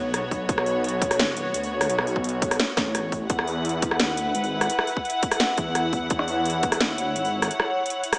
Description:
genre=half-time drum and bass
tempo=171 BPM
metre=4/4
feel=half-time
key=unclear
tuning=A4 = 440 Hz
part: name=dark studio string section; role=sustained chords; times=0.0-8.2 s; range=B3 to F#5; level=-26 LUFS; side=equal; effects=sidechain pumping
part: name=dark detuned saw bass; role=bass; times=0.0-7.5 s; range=G#1 to E2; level=-28 LUFS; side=equal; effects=none
part: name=drum and bass drum kit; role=drums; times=0.1-8.2 s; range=hi-hat, rim click, snare drum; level=-25 LUFS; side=equal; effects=none
part: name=electronic kick drum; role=drums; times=0.3-6.7 s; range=none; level=-26 LUFS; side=equal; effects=none
room=moderate lush hall reverb, RT60 2.2 s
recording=small speaker sound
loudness=-22 LUFS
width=side -26 dB against mid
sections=0.0-8.2 A section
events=none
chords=0.0 Bm; 3.3 E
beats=0.14 | 0.49 0.84 1.19 1.54 | 1.89 2.24 2.60 2.95 | 3.30 3.65 4.00 4.35 | 4.70 5.05 5.40 5.75 | 6.10 6.46 6.80 7.16 | 7.51 7.86

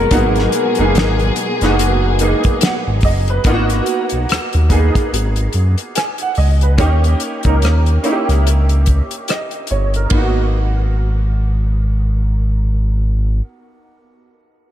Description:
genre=R&B, neo-soul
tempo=72 BPM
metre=4/4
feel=swing 60% on 16ths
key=G# minor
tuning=A4 = 440 Hz
part: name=electric guitar through a small old amp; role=melody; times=0.0-1.3 s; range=A#4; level=-21 LUFS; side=left 3 dB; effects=spring reverb, tape echo
part: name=bright upright piano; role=accompaniment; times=0.0-14.7 s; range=G#3 to G#5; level=-19 LUFS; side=right 2 dB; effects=ensemble chorus
part: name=warm studio string section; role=sustained chords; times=0.0-3.4 s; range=B2 to G#4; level=-21 LUFS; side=left 2 dB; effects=none
part: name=smooth synth bass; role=bass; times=0.0-13.4 s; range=F#1 to F#2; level=-14 LUFS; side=equal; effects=none
part: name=damped 70s drum kit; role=drums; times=0.1-10.3 s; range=hi-hat, kick drum, ride cymbal, rim click, snare drum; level=-18 LUFS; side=equal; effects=none
room=light reverb, small room ambience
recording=none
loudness=-13 LUFS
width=side -12 dB against mid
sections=0.0-3.4 A section; 3.4-10.1 B section; 10.1-13.4 C section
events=none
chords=0.0 G#m9; 6.8 D#7; 10.1 G#m9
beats=| 0.11 0.94 1.78 2.61 | 3.44 4.28 5.11 5.94 | 6.78 7.61 8.44 9.28 | 10.11 10.94 11.78 12.61

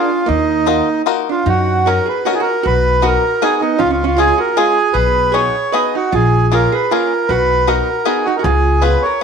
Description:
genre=musette waltz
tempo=155 BPM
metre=3/4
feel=swing 53% on 8ths, rubato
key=F# major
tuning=A4 = 441 Hz
part: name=bandoneon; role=melody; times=0.0-9.2 s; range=Eb4 to D#5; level=-15 LUFS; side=right 2 dB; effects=slapback echo
part: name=archtop guitar, miked and amplified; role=second line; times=0.0-9.2 s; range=Bb3 to B4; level=-20 LUFS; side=right 8 dB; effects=none
part: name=bluegrass banjo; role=accompaniment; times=0.0-9.2 s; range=G#3 to Bb4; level=-20 LUFS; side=left 13 dB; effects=none
part: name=upright bass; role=bass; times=0.3-8.9 s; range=A#1 to F#2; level=-17 LUFS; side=left 2 dB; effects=none
room=moderate echo chamber reverb, RT60 1.5 s, small room ambience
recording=1960s-style stereo with parts hard left and right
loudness=-12 LUFS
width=side -6 dB against mid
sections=0.0-1.5 A section; 1.5-9.2 B section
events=none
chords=0.3 Ebmadd9; 1.5 F#6; 2.6 Bmaj7; 3.8 C#; 5.0 G#m7/B; 6.1 A#m7; 7.3 Bmaj7; 8.4 C#7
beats=| 0.28 0.67 1.06 | 1.46 1.86 2.25 | 2.64 3.03 3.41 | 3.80 4.18 4.57 | 4.95 5.34 5.73 | 6.13 6.53 6.91 | 7.30 7.68 8.06 | 8.44 8.82 9.21

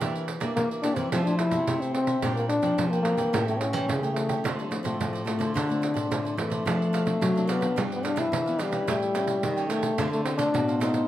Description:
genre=samba and choro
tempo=108 BPM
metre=4/4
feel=straight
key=D minor, F major from 6.7 s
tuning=A4 = 441 Hz
part: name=cavaquinho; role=accompaniment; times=0.0-11.1 s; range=D4 to G5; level=-36 LUFS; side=right 6 dB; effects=none
part: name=nylon-string guitar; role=accompaniment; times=0.0-11.1 s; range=G2 to A4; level=-34 LUFS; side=left 2 dB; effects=none
part: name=nylon-string guitar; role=bass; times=0.0-11.0 s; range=A2 to Bb3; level=-30 LUFS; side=equal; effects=none
part: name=pandeiro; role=percussion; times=0.0-11.1 s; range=none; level=-32 LUFS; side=right 5 dB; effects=none
part: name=mellow trombone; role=melody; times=0.6-11.1 s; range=F3 to E4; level=-27 LUFS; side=left 2 dB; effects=none
room=light reverb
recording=none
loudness=-24 LUFS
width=side -13 dB against mid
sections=0.0-6.7 A section; 6.7-11.1 B section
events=none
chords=0.0 Em7b5; 1.1 Fmaj9; 2.2 Bb69; 3.3 A7; 4.4 Dm7; 6.7 F6; 7.8 G7; 8.9 A7; 10.0 Dm7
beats=| 0.01 0.57 1.12 1.68 | 2.23 2.79 3.34 3.89 | 4.45 5.00 5.56 6.11 | 6.67 7.22 7.77 8.33 | 8.88 9.44 9.99 10.54

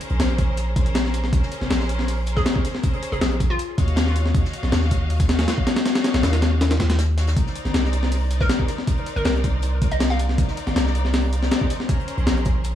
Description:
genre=drum and bass, jungle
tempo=159 BPM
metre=4/4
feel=straight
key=C phrygian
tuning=A4 = 440 Hz
part: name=clear studio string section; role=sustained chords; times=0.0-12.8 s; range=Db4 to F5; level=-31 LUFS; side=left 1 dB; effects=none
part: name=breakbeat sampler-style drum kit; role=drums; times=0.0-12.7 s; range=hi-hat, kick drum, snare drum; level=-21 LUFS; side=left 1 dB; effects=overdrive
part: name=natural country drum kit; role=drums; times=0.0-12.7 s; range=hi-hat, snare drum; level=-37 LUFS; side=left 2 dB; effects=high-pass filter on hats, high-pass filter on snare, high-pass filter on room
part: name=long sustained 808-style bass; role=bass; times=0.1-12.8 s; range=F1 to Eb2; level=-21 LUFS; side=equal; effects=none
part: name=hollow square pluck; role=melody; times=2.4-3.6, 8.4-10.4 s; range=F4 to F5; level=-31 LUFS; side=equal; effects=wide subtle chorus, cassette tape, dub echo
room=studio reverb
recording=vinyl crackle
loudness=-19 LUFS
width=side -11 dB against mid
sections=0.0-12.8 A section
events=kick drops out 6.6-7.4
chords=0.0 Bbm9; 3.6 Ebm9; 7.4 Cm9; 11.9 Bbm9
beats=0.19 0.57 0.95 | 1.33 1.70 2.08 2.46 | 2.84 3.21 3.59 3.97 | 4.34 4.72 5.10 5.48 | 5.86 6.23 6.61 6.99 | 7.36 7.74 8.12 8.50 | 8.87 9.25 9.63 10.01 | 10.38 10.76 11.14 11.52 | 11.89 12.27 12.65

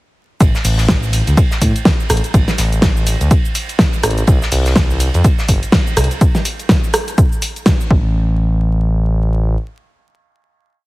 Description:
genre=deep house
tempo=124 BPM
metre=4/4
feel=swing 59% on 16ths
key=A minor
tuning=A4 = 439 Hz
part: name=smooth gliding synth bass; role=bass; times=0.4-9.6 s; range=G1 to A2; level=-15 LUFS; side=equal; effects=sidechain pumping
part: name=deep house drum kit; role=drums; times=0.4-7.9 s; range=cabasa, hi-hat, rim click, snare drum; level=-17 LUFS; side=equal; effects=none
part: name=electronic kick drum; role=drums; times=0.4-8.0 s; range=none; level=-14 LUFS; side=equal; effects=none
part: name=loose indie drum kit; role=drums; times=0.4-6.1 s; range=hi-hat, ride cymbal, snare drum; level=-26 LUFS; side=right 2 dB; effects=high-pass filter on cymbals, high-pass filter on hats, high-pass filter on snare, high-pass filter on room
room=little or no reverb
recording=heavily compressed radio sound, vinyl crackle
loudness=-12 LUFS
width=side -20 dB against mid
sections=0.4-8.1 drop; 8.1-10.9 final hit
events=drop 0.4-8.1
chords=none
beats=| 0.41 0.89 1.37 1.86 | 2.34 2.83 3.31 3.79 | 4.28 4.76 5.24 5.73 | 6.21 6.70 7.18 7.66 | 8.15 8.63 9.12

